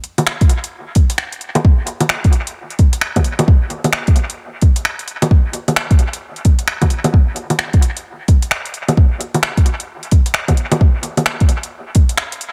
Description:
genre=future garage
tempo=131 BPM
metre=4/4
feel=swing 62% on 16ths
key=none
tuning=none
part: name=deep house drum kit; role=drums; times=0.0-12.5 s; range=bongos, finger snaps, hi-hat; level=-21 LUFS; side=equal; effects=small room reverb, dub echo
part: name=electronic kick drum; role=drums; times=0.4-12.1 s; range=none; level=-13 LUFS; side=equal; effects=small room reverb
room=light reverb, digital ambience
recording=echo-heavy mix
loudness=-15 LUFS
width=mono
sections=0.0-12.5 A section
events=none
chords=none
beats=0.27 0.73 1.19 | 1.65 2.10 2.56 3.02 | 3.48 3.94 4.39 4.85 | 5.31 5.77 6.23 6.68 | 7.14 7.60 8.06 8.52 | 8.97 9.43 9.89 10.35 | 10.81 11.26 11.72 12.18

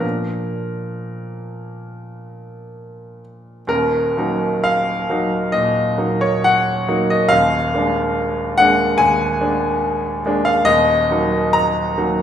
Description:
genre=classical, romantic character piece for solo piano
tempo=61-73 BPM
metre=4/4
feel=rubato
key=Eb minor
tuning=A4 = 440 Hz
part: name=clear baby grand piano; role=solo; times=0.0-12.2 s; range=Eb1 to Bb5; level=-16 LUFS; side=equal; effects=none
room=wet recital hall reverb, RT60 1.4 s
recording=recorded in a church or concert hall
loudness=-15 LUFS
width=side -9 dB against mid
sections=0.0-3.7 A section; 3.7-12.2 A section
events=none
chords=0.0 Bb; 3.7 Ebm; 7.3 Bb7/Eb; 10.7 Ebm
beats=| 0.03 0.94 1.86 2.77 | 3.69 4.65 5.53 6.45 | 7.31 8.16 8.98 9.82 | 10.66 11.54

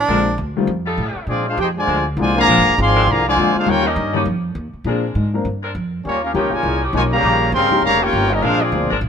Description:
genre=jazz, big band swing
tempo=202 BPM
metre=4/4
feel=swing 61% on 8ths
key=Bb major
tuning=A4 = 440 Hz
part: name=upright bass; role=bass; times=0.0-9.1 s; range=F1 to Bb2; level=-22 LUFS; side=equal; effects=none
part: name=warm grand piano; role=accompaniment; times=0.1-8.9 s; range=D3 to Bb4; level=-22 LUFS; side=left 5 dB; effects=none
part: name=bright saxophone section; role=sustained chords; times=0.1-9.0 s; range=F3 to Bb4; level=-26 LUFS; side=left 1 dB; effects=none
part: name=warm trumpet section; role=melody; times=1.3-8.9 s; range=Bb3 to C6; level=-17 LUFS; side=equal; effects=none
part: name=bright trombone section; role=second line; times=1.3-8.9 s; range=Bb2 to G4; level=-22 LUFS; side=equal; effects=none
room=light reverb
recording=minimal, uncompressed stereo recording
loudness=-15 LUFS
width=side -7 dB against mid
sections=0.0-1.3 A section; 1.3-9.1 B section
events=none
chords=0.1 Bb9; 0.7 F9; 1.3 Bb9; 3.7 Eb9; 4.9 Bb9; 6.0 Eb9; 8.4 Bb9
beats=| 0.09 0.39 0.69 0.98 | 1.28 1.58 1.88 2.17 | 2.47 2.77 3.07 3.37 | 3.67 3.96 4.26 4.56 | 4.86 5.15 5.45 5.75 | 6.04 6.34 6.64 6.94 | 7.23 7.53 7.83 8.13 | 8.42 8.72 9.02

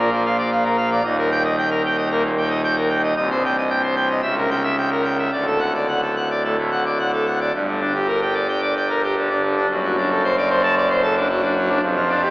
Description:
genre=classical, organ toccata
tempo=112 BPM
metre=4/4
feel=straight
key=G minor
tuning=A4 = 440 Hz
part: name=pipe organ, full organ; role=solo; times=0.0-12.3 s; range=C1 to A5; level=-17 LUFS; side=equal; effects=none
room=wet church reverb, RT60 3.2 s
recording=worn, warbling old tape, cassette tape, warbly pitch drift, AM radio sound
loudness=-17 LUFS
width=side -20 dB against mid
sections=0.0-7.5 A section; 7.5-12.3 B section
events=none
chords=0.0 Bb; 1.0 Eb; 3.2 Cm; 4.2 C#dim7; 5.3 D; 7.5 Gm; 9.7 D7/F#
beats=0.51 | 1.04 1.57 2.10 2.63 | 3.17 3.70 4.24 4.78 | 5.33 5.89 6.44 6.99 | 7.55 8.09 8.63 9.17 | 9.70 10.23 10.76 11.30 | 11.83

